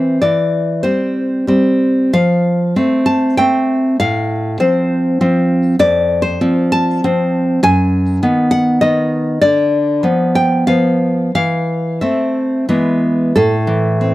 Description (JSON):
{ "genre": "romantic piece for solo classical guitar", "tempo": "87-105 BPM", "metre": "3/4", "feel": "rubato", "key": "unclear", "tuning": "A4 = 440 Hz", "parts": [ { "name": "nylon-string guitar", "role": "solo", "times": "0.0-14.1 s", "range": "F2 to A5", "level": "-12 LUFS", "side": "equal", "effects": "none" } ], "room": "small room ambience", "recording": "dry, close 1970s-style studio recording", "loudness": "-12 LUFS", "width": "side -16 dB against mid", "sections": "0.0-13.4 A section", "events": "none", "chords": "0.2 C/E; 2.1 F; 4.0 F/A; 5.8 F; 7.6 B/F#; 9.4 Bdim/D; 11.3 Am/E; 12.7 E; 13.4 Am", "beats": "| 0.23 0.85 1.48 | 2.14 2.76 3.38 | 3.99 4.60 5.21 | 5.79 6.39 7.03 | 7.63 8.21 8.80 | 9.41 10.03 10.67 | 11.33 12.00 12.68 | 13.35 14.00" }